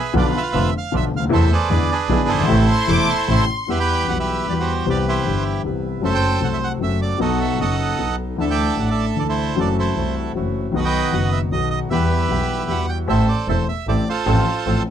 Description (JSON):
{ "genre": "tango", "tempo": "153 BPM", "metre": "3/4", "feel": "rubato", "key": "A harmonic minor, E minor from 3.7 s", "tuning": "A4 = 441 Hz", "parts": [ { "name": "bandoneon", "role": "melody", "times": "0.0-14.8 s", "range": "D4 to G5", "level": "-22 LUFS", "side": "right 4 dB", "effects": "none" }, { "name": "warm grand piano", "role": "accompaniment", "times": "0.1-14.8 s", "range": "E1 to F#5", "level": "-21 LUFS", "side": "left 4 dB", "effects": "none" }, { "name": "rich double bass", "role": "bass", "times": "0.1-14.8 s", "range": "E1 to E2", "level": "-22 LUFS", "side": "right 1 dB", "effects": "none" }, { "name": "bandoneon", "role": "stabs", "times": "0.2-14.8 s", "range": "G3 to F#5", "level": "-31 LUFS", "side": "right 6 dB", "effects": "none" }, { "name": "rich studio violin section", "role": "second line", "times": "2.7-3.7 s", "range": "C6 to D6", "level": "-23 LUFS", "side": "left 4 dB", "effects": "none" } ], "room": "moderate booth ambience, RT60 0.3 s", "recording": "none", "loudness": "-17 LUFS", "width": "side -9 dB against mid", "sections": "0.0-3.7 A section; 3.7-13.1 B section; 13.1-14.9 A section", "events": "none", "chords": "0.2 Bdim; 1.3 Am/E; 1.7 E7; 2.5 Am; 3.7 Emadd9; 4.9 Cmaj7; 6.0 F#dim; 7.2 B7; 8.4 Dsus2; 9.6 F#m7b5; 10.7 B; 11.9 Emadd9; 13.1 Am; 14.3 F/A", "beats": "| 0.15 0.54 0.93 | 1.32 1.71 2.10 | 2.49 2.88 3.28 | 3.69 4.08 4.48 | 4.87 5.26 5.65 | 6.04 6.43 6.81 | 7.20 7.59 7.99 | 8.39 8.79 9.18 | 9.58 9.97 10.36 | 10.74 11.13 11.52 | 11.91 12.30 12.70 | 13.10 13.49 13.88 | 14.28 14.66" }